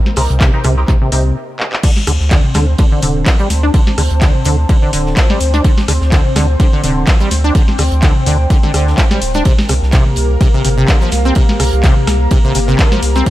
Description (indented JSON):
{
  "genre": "acid house",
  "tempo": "126 BPM",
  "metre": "4/4",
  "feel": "swing 55% on 16ths",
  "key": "D minor",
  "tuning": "A4 = 444 Hz",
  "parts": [
    { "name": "lush unison pad", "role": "sustained chords", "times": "0.0-13.3 s", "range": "Bb3 to C5", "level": "-23 LUFS", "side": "equal", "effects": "chorus, phaser, sidechain pumping" },
    { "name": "warbly tape-like pad", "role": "texture", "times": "0.0-13.3 s", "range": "G4 to Bb5", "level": "-25 LUFS", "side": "left 1 dB", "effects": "chorus, built-in reverb, sidechain pumping" },
    { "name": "booming analog drum machine", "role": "drums", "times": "0.1-13.3 s", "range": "crash cymbal, handclaps, hi-hat, ride cymbal, rim click, snare drum, toms", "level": "-19 LUFS", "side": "left 1 dB", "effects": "small room ambience" },
    { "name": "acid bass, saw", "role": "riff", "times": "0.2-13.3 s", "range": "C3 to D4", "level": "-18 LUFS", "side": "equal", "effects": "ensemble chorus, vintage 12-bit sampler grit, dub echo" },
    { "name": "band-passed chord stab", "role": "stabs", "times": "0.2-1.2 s", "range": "C4 to Bb4", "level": "-24 LUFS", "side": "right 1 dB", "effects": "phaser, ensemble chorus, dub echo" },
    { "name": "round analog bass", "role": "bass", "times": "0.2-13.2 s", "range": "D1 to D2", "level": "-14 LUFS", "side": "equal", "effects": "sidechain pumping" },
    { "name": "damped 70s drum kit", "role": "drums", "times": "0.2-13.3 s", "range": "hi-hat, snare drum", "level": "-30 LUFS", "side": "right 4 dB", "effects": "sidechain pumping on hats, high-pass filter on hats, small room ambience, high-pass filter on snare, high-pass filter on room" },
    { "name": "electronic kick drum", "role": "drums", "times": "0.4-13.3 s", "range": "none", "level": "-11 LUFS", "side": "equal", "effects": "overdrive, small room ambience" }
  ],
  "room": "little or no reverb",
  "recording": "none",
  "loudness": "-10 LUFS",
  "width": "side -15 dB against mid",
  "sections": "0.0-1.8 A section; 1.8-13.3 B section",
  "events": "stop 1.4-1.8; drum fill 1.6; drop 1.8-13.3",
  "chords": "0.0 Cm7; 1.8 D7(no3); 9.5 C5"
}